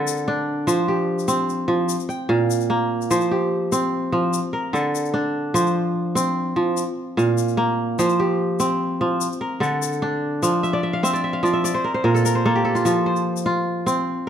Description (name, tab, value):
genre	west african traditional, West African string and xylophone music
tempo	98 BPM (dotted quarters)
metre	12/8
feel	straight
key	F major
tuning	A4 = 440 Hz
part	kora	arpeggios	0.0-14.3 s	Bb2 to G5	-19 LUFS	right 1 dB	none
part	tube shaker	percussion	0.1-14.0 s	none	-31 LUFS	left 15 dB	none
room	moderate recital hall reverb, RT60 1.6 s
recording	dark, warm production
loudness	-19 LUFS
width	side -9 dB against mid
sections	0.0-12.9 A section; 12.9-14.3 B section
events	kora fill 10.6-12.9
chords	0.0 D5; 0.7 F5; 1.9 Bb5; 3.1 F5; 4.3 D5; 5.6 F5; 6.8 Bb5; 8.0 F5; 9.2 D5; 10.4 F5; 11.6 N.C.; 12.9 F5